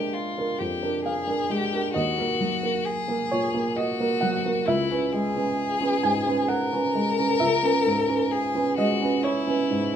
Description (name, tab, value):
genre	neoclassical piano and strings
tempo	66 BPM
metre	3/4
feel	rubato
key	C# dorian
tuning	A4 = 440 Hz
part	clear violin	melody	0.0-10.0 s	E4 to A#4	-26 LUFS	left 4 dB	none
part	felt-muted upright piano	accompaniment	0.0-10.0 s	A#1 to G#5	-24 LUFS	right 2 dB	none
room	moderate large studio reverb, RT60 1.2 s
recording	minimal, uncompressed stereo recording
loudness	-22 LUFS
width	side -9 dB against mid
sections	0.0-10.0 A section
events	none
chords	0.0 A#7; 1.9 D#m; 4.7 C#m7